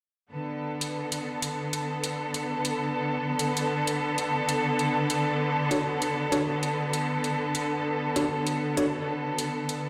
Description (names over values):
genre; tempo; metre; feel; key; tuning
glitch hop; 98 BPM; 4/4; swing 57% on 16ths; B minor; A4 = 444 Hz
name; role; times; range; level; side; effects
bright symphonic string section; sustained chords; 0.3-9.9 s; D3 to A4; -29 LUFS; equal; none
electronic hi-hat; drums; 0.8-9.8 s; none; -34 LUFS; equal; none
bright tine electric piano; stabs; 5.7-8.9 s; D4 to C#5; -32 LUFS; equal; delay
room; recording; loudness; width
moderate plate reverb, RT60 1.5 s; played on a big sound system in a bare room, large studio reverb; -28 LUFS; mono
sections
0.3-9.9 A section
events
none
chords
0.3 Bm7